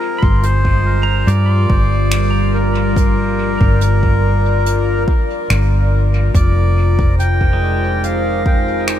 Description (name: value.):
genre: ambient dub.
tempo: 71 BPM.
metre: 4/4.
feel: straight.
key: unclear.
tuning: A4 = 440 Hz.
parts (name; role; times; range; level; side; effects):
melodica; melody; 0.0-8.8 s; Bb4 to G5; -21 LUFS; right 1 dB; dub echo.
deep dark ambient pad; sustained chords; 0.0-9.0 s; G3 to G5; -21 LUFS; left 2 dB; chorus, built-in reverb.
pedal steel guitar; arpeggios; 0.2-9.0 s; Ab3 to C6; -27 LUFS; right 2 dB; dub echo.
hollow-body short-scale fingered electric bass; bass; 0.2-9.0 s; F1 to G2; -15 LUFS; equal; none.
electronic kick drum; drums; 0.2-8.6 s; none; -16 LUFS; equal; overdrive.
jazz brush drum kit; drums; 0.4-9.0 s; finger snaps, hi-hat; -26 LUFS; right 1 dB; dub echo.
drifting glass-harmonics texture; texture; 6.8-9.0 s; Bb4; -28 LUFS; right 2 dB; chorus, built-in reverb.
room: studio reverb.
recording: none.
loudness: -12 LUFS.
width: side -11 dB against mid.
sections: 0.0-9.0 A section.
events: none.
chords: 0.0 Gm7; 6.3 Fm7.